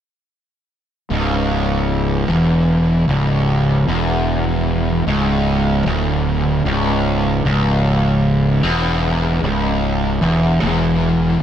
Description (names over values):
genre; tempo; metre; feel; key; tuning
metal; 76 BPM; 4/4; straight; C# minor; A4 = 438 Hz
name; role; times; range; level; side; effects
fuzz guitar; riff; 1.1-11.4 s; C#2 to E2; -16 LUFS; equal; distortion
fuzz fingered electric bass; bass; 1.1-11.4 s; C#1 to E1; -20 LUFS; equal; overdrive, tube saturation
room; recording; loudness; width
little or no reverb; none; -15 LUFS; side -9 dB against mid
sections
1.1-11.4 A section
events
none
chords
1.1 C#m